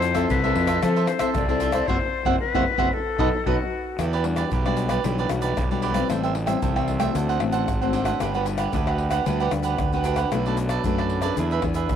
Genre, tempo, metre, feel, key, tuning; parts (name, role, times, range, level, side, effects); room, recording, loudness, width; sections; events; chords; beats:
samba and choro; 114 BPM; 4/4; straight; E minor; A4 = 440 Hz
bright reedy concert flute; second line; 0.0-4.0 s; F#4 to D5; -26 LUFS; left 6 dB; cassette tape
cavaquinho; accompaniment; 0.0-12.0 s; D4 to G5; -26 LUFS; right 9 dB; cassette tape
nylon-string guitar; accompaniment; 0.0-12.0 s; A2 to B4; -28 LUFS; left 8 dB; cassette tape
fuzz fingered electric bass; bass; 0.0-12.0 s; F#1 to F3; -26 LUFS; right 1 dB; overdrive
egg shaker, pandeiro, surdo and tamborim; percussion; 0.0-12.0 s; -28 LUFS; left 2 dB
moderate lush hall reverb, RT60 2.5 s; home recording on cassette; -21 LUFS; side -9 dB against mid
0.0-4.0 A section; 4.0-12.0 B section
band accent 1.9-4.0
0.0 Fmaj7; 1.9 Cmaj7#11/F#; 2.9 B7; 4.0 Em9; 6.1 Am7; 7.2 D7; 8.2 Gmaj7; 10.3 Bm7; 11.4 E7
0.30 0.83 1.35 | 1.88 2.41 2.93 3.46 | 3.99 4.51 5.04 5.57 | 6.10 6.63 7.15 7.68 | 8.21 8.74 9.27 9.79 | 10.32 10.85 11.38 11.91